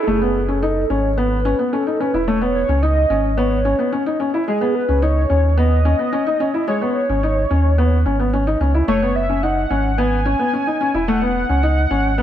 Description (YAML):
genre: piano and strings electronica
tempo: 109 BPM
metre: 4/4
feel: straight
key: F# dorian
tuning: A4 = 440 Hz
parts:
  - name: warm velvety synth lead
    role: melody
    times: 0.0-12.2 s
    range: G#4 to G#5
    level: -22 LUFS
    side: right 1 dB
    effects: chorus
  - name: felt-muted upright piano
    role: riff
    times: 0.0-12.2 s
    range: G#3 to E4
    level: -19 LUFS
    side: left 2 dB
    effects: tape echo
  - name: warm sub bass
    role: bass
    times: 0.1-12.2 s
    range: E1 to D#2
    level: -19 LUFS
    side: right 1 dB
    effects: none
room: light reverb, studio reverb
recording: high-pass filter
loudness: -16 LUFS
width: side -10 dB against mid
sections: 0.1-12.2 A section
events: drop 0.1-12.2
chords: 0.1 F#sus2; 4.5 C#5; 8.9 F#sus2